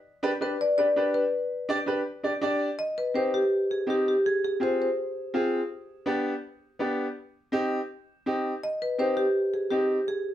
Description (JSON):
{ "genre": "latin", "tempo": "165 BPM", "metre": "4/4", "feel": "straight", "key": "C harmonic minor", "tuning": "A4 = 440 Hz", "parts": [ { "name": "bright upright piano", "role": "accompaniment", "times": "0.2-10.0 s", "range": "B3 to D5", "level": "-27 LUFS", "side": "equal", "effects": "none" }, { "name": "marimba with medium mallets", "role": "melody", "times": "0.4-5.1, 8.6-10.3 s", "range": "G4 to Eb5", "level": "-25 LUFS", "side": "left 1 dB", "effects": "none" } ], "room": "wet studio reverb, RT60 0.6 s", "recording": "none", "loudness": "-25 LUFS", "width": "side -12 dB against mid", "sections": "0.0-2.8 A section; 2.8-10.3 B section", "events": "none", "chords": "0.0 G; 2.8 Cm; 4.2 Fm; 5.7 G; 7.2 Cm" }